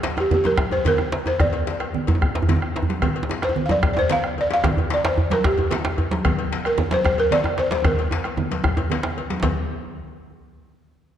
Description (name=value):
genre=west african traditional, West African drum ensemble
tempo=149 BPM (dotted quarters)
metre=12/8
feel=straight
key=Bb major pentatonic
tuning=A4 = 440 Hz
part: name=bombo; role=percussion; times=0.0-9.6 s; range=none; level=-26 LUFS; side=equal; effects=none
part: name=djembe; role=percussion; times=0.0-9.6 s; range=none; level=-30 LUFS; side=left 4 dB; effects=none
part: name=djembe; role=percussion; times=0.0-9.6 s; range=none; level=-25 LUFS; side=right 1 dB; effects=none
part: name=balafon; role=melody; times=0.2-9.1 s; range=G4 to F5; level=-22 LUFS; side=equal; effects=none
part: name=cowbell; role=percussion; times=0.2-9.6 s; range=none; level=-34 LUFS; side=left 6 dB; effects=none
part: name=congas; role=percussion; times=0.3-9.6 s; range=none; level=-28 LUFS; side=right 3 dB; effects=none
room=wet concert hall reverb, RT60 1.9 s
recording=dark, warm production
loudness=-19 LUFS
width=side -10 dB against mid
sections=0.0-9.4 A section; 9.4-11.0 B section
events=speeding up 0.0-11.0; drum fill 7.8-9.4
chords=none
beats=0.18 0.59 1.00 | 1.40 1.81 2.21 2.62 | 3.02 3.43 3.83 4.24 | 4.64 5.04 5.44 5.85 | 6.25 6.65 7.05 7.45 | 7.85 8.24 8.64 9.04 | 9.44